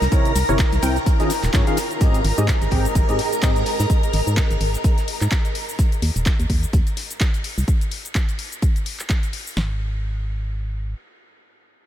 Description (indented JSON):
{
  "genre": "piano house",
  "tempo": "127 BPM",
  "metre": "4/4",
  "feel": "swing 57% on 16ths",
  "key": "Ab major",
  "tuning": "A4 = 440 Hz",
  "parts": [
    { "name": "string machine, violins", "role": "sustained chords", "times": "0.0-5.8 s", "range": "Bb4 to Bb5", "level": "-27 LUFS", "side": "equal", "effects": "ensemble chorus, sidechain pumping" },
    { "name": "organ-like FM bass", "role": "bass", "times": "0.0-10.9 s", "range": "Eb1 to Ab2", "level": "-22 LUFS", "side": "equal", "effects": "sidechain pumping" },
    { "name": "cloth-damped thuddy drum kit", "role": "drums", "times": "0.0-7.6 s", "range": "hi-hat, snare drum", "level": "-40 LUFS", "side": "left 1 dB", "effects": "none" },
    { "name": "house drum kit", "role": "drums", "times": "0.0-9.5 s", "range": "handclaps, hi-hat, shaker", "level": "-29 LUFS", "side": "left 1 dB", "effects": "none" },
    { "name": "percussive organ stab", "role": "riff", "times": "0.1-3.6 s", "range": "Ab2 to G5", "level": "-24 LUFS", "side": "left 1 dB", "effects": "ensemble chorus, sidechain pumping, ping-pong delay" },
    { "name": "house drum kit", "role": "drums", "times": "0.1-9.7 s", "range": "kick drum, snare drum", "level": "-19 LUFS", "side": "equal", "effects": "none" },
    { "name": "ethereal airy pad", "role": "texture", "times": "2.6-3.9 s", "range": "Ab4 to Bb5", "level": "-33 LUFS", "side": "right 2 dB", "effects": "ensemble chorus, built-in reverb, tremolo, sidechain pumping" }
  ],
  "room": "light reverb",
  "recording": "none",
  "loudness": "-18 LUFS",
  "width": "side -11 dB against mid",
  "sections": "0.0-2.0 A section; 2.0-9.6 B section; 9.6-11.9 C section",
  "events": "filter sweep on FM bass 2.0-7.7; filter sweep on synth stab 2.0-3.9",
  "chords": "0.0 C7b9; 1.1 Eb9sus4; 2.0 Abmaj7; 5.6 Eb5; 7.4 N.C.",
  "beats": "| 0.12 0.59 1.06 1.54 | 2.01 2.48 2.95 3.43 | 3.90 4.37 4.84 5.32 | 5.79 6.26 6.73 7.21 | 7.68 8.15 8.62 9.10 | 9.57 10.04 10.51"
}